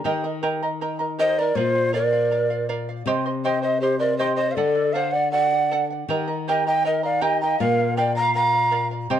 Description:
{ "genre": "andean folk, Andean ensemble", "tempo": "80 BPM", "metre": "2/4", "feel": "straight", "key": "unclear", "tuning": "A4 = 444 Hz", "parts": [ { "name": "charango", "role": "accompaniment", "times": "0.0-9.2 s", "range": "G4 to C6", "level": "-27 LUFS", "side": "right 3 dB", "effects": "none" }, { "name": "nylon-string guitar", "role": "accompaniment", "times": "0.0-9.2 s", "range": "Bb2 to Eb3", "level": "-28 LUFS", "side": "left 5 dB", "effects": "none" }, { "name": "breathy mellow large quena", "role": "melody", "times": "1.2-8.9 s", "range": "C5 to Bb5", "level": "-22 LUFS", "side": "right 1 dB", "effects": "tape echo" }, { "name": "polished pan flute", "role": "second line", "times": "1.2-8.9 s", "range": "F4 to F5", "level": "-25 LUFS", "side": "equal", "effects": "none" } ], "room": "moderate studio reverb, RT60 0.6 s", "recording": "dark, warm production", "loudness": "-19 LUFS", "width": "side -10 dB against mid", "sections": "0.1-9.2 A section", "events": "none", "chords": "0.1 Eb; 1.6 Bb; 3.1 Cm; 4.6 D; 6.1 Eb; 7.6 Bb", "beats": "| 0.05 0.81 | 1.56 2.31 | 3.06 3.82 | 4.57 5.33 | 6.08 6.83 | 7.59 8.35 | 9.10" }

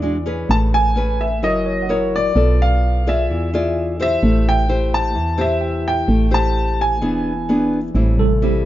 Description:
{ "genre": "bossa nova", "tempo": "129 BPM", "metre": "4/4", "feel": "straight", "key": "A minor", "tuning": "A4 = 441 Hz", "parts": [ { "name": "warm concert grand piano", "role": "melody", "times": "0.0-7.7 s", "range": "C#5 to A5", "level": "-21 LUFS", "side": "equal", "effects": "none" }, { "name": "nylon-string guitar", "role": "accompaniment", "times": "0.0-8.7 s", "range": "A2 to D5", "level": "-20 LUFS", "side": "left 2 dB", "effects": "none" }, { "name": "tine electric piano", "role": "accompaniment", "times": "0.0-2.4, 5.6-8.7 s", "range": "C3 to G5", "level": "-24 LUFS", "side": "right 3 dB", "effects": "medium stereo tremolo" }, { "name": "woody FM bass", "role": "bass", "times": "0.0-8.7 s", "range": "E1 to E2", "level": "-19 LUFS", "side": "equal", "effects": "none" } ], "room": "light reverb", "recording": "dark, warm production, nothing above 7.5 kHz", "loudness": "-15 LUFS", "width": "side -14 dB against mid", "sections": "0.0-7.9 A section", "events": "none", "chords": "0.5 Amaj9; 1.4 F#7; 2.4 Bm7b5; 3.3 E7b9; 4.2 Am7; 7.0 E7; 7.9 Am7", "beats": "0.02 | 0.49 0.95 1.42 1.89 | 2.35 2.82 3.29 3.75 | 4.22 4.69 5.15 5.62 | 6.08 6.55 7.02 7.48 | 7.95 8.41" }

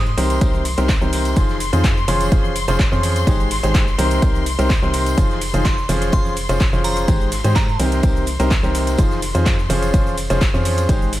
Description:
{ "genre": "piano house", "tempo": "126 BPM", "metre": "4/4", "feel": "straight", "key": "unclear", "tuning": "A4 = 440 Hz", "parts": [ { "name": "glassy synth bell", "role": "melody", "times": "0.0-0.2, 5.7-7.8 s", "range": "Bb5 to Eb6", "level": "-29 LUFS", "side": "right 3 dB", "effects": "chorus, phaser, digital delay" }, { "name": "clear symphonic string section", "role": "sustained chords", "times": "0.0-11.2 s", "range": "C6", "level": "-28 LUFS", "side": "left 4 dB", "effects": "sidechain pumping" }, { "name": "organ-like FM bass", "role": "bass", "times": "0.0-11.2 s", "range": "F1 to Ab2", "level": "-21 LUFS", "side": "equal", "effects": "sidechain pumping" }, { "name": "house drum kit", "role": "drums", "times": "0.1-11.2 s", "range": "handclaps, hi-hat, ride cymbal, shaker", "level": "-27 LUFS", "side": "right 1 dB", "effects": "none" }, { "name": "tambourine and congas", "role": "percussion", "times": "0.1-11.1 s", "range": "none", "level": "-30 LUFS", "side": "right 4 dB", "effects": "none" }, { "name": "clear baby grand piano", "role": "riff", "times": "0.2-11.1 s", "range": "C3 to C5", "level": "-21 LUFS", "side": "equal", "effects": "sidechain pumping, digital delay" }, { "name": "raw garage drum kit", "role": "drums", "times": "0.2-11.2 s", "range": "hi-hat, snare drum, tambourine", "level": "-36 LUFS", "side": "equal", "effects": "none" }, { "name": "electronic kick drum", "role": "drums", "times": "0.4-11.0 s", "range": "none", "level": "-18 LUFS", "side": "equal", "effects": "none" } ], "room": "small room ambience", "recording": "none", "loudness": "-15 LUFS", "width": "side -15 dB against mid", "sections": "0.0-11.2 A section", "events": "none", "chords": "0.2 Cm7; 1.4 Fm7; 2.1 Dbmaj7/F; 3.3 Abmaj7; 4.0 Cm7; 5.2 Fm7; 5.9 Dbmaj7/F; 7.1 Abmaj7; 7.8 Cm7; 9.0 Fm7; 9.7 Dbmaj7/F", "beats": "0.41 0.89 | 1.37 1.84 2.32 2.79 | 3.27 3.75 4.22 4.70 | 5.17 5.65 6.13 6.60 | 7.08 7.56 8.03 8.51 | 8.98 9.46 9.94 10.41 | 10.89" }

